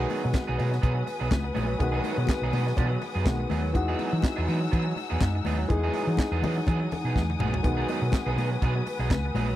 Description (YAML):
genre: disco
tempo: 123 BPM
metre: 4/4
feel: swing 56% on 16ths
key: B major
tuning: A4 = 440 Hz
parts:
  - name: clear grand piano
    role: accompaniment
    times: 0.0-9.6 s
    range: D#3 to B4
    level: -33 LUFS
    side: left 2 dB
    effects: none
  - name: electric guitar at the edge of break-up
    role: accompaniment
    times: 0.0-9.6 s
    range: F#3 to G#4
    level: -33 LUFS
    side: right 6 dB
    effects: spring reverb
  - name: dark studio string section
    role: sustained chords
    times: 0.0-9.6 s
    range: D#4 to E6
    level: -34 LUFS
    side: left 3 dB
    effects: none
  - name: hollow-body short-scale fingered electric bass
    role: bass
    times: 0.0-9.5 s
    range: A#1 to E3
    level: -28 LUFS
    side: equal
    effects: none
  - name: tight funk drum kit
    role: drums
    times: 0.1-9.5 s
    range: handclaps, hi-hat, kick drum, snare drum, toms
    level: -27 LUFS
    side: equal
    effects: none
  - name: congas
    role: percussion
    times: 0.1-9.5 s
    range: none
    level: -35 LUFS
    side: left 5 dB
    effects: none
room: little or no reverb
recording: dry, close 1970s-style studio recording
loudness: -24 LUFS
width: side -14 dB against mid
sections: 0.0-9.6 A section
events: drum fill 7.2-7.7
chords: 0.0 B6; 3.8 Emaj9; 7.7 B6